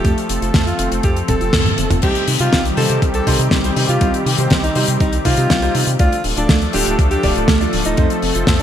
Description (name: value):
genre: italo disco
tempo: 121 BPM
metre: 4/4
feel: straight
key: C dorian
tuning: A4 = 441 Hz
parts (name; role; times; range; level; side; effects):
- clear alto saxophone; melody; 0.0-8.6 s; D4 to A4; -22 LUFS; equal; ping-pong delay
- warm analog pad; sustained chords; 0.0-8.6 s; Eb3 to A4; -22 LUFS; left 1 dB; chorus
- soft round pluck; arpeggios; 0.0-8.5 s; A3 to G4; -26 LUFS; right 4 dB; chorus, ping-pong delay
- round analog bass; bass; 0.0-8.6 s; D1 to C3; -20 LUFS; equal; none
- damped 70s drum kit; drums; 0.0-8.6 s; crash cymbal, hi-hat, snare drum, toms; -19 LUFS; left 2 dB; studio reverb
- electronic kick drum; drums; 0.0-8.6 s; none; -18 LUFS; equal; studio reverb
- clear concert grand piano; stabs; 2.0-8.5 s; C3 to D5; -24 LUFS; left 1 dB; wide subtle chorus
room: moderate lush hall reverb, RT60 1.9 s, small room ambience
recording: bright 1980s-style digital production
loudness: -13 LUFS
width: side -10 dB against mid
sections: 0.0-2.0 A section; 2.0-8.6 B section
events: drum fill 1.3-2.0; band accent 1.5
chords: 0.0 F; 2.0 Cm; 6.0 Dm; 8.0 F